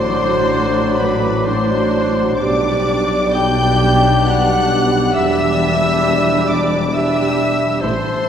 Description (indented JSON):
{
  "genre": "classical, slow romantic movement for symphony orchestra",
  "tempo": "66 BPM",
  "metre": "3/4",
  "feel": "rubato",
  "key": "unclear",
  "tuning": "A4 = 440 Hz",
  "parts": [
    { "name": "warm symphonic violin section", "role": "melody", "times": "0.0-8.3 s", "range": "B5 to G6", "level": "-24 LUFS", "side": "left 2 dB", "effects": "none" },
    { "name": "clear clarinet", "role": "second line", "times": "0.0-8.3 s", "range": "B4 to G5", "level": "-24 LUFS", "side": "left 1 dB", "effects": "none" },
    { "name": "silver concert flute", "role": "second line", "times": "0.0-8.3 s", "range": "A5 to D6", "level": "-30 LUFS", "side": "left 1 dB", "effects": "none" },
    { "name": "warm oboe", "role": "second line", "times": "0.0-8.3 s", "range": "D5 to E5", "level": "-29 LUFS", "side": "left 1 dB", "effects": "none" },
    { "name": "warm symphonic violin section", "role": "second line", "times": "0.0-8.3 s", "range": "B4 to G5", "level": "-25 LUFS", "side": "left 2 dB", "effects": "none" },
    { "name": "mellow bassoon", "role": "accompaniment", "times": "0.0-8.3 s", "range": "E3 to G3", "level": "-24 LUFS", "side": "right 3 dB", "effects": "none" },
    { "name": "warm symphonic viola section", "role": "accompaniment", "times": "0.0-7.9 s", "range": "D4 to A4", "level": "-24 LUFS", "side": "right 2 dB", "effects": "none" },
    { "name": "mellow French horn section", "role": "sustained chords", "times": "0.0-8.3 s", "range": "E3 to E4", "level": "-24 LUFS", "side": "equal", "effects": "none" },
    { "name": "concert harp", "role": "arpeggios", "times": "0.0-8.3 s", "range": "A2 to B4", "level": "-25 LUFS", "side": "left 4 dB", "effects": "none" },
    { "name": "dark trumpet section", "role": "stabs", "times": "0.0-8.3 s", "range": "B4 to G5", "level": "-21 LUFS", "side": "equal", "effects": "none" },
    { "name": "dark symphonic cello section", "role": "bass", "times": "0.0-7.9 s", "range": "E2 to B2", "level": "-25 LUFS", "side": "right 1 dB", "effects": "none" },
    { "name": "mellow tuba", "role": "bass", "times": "0.0-8.0 s", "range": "E1 to B1", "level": "-22 LUFS", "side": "equal", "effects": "none" },
    { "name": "warm symphonic double bass section", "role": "bass", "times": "0.0-7.9 s", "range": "E1 to B1", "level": "-25 LUFS", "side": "equal", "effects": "none" }
  ],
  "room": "wet scoring stage reverb, RT60 2.1 s",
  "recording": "heard from further back in the room",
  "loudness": "-13 LUFS",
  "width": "side -8 dB against mid",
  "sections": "0.0-8.3 A section",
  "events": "none",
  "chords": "0.0 D7/A; 2.4 G/B; 5.2 Em7"
}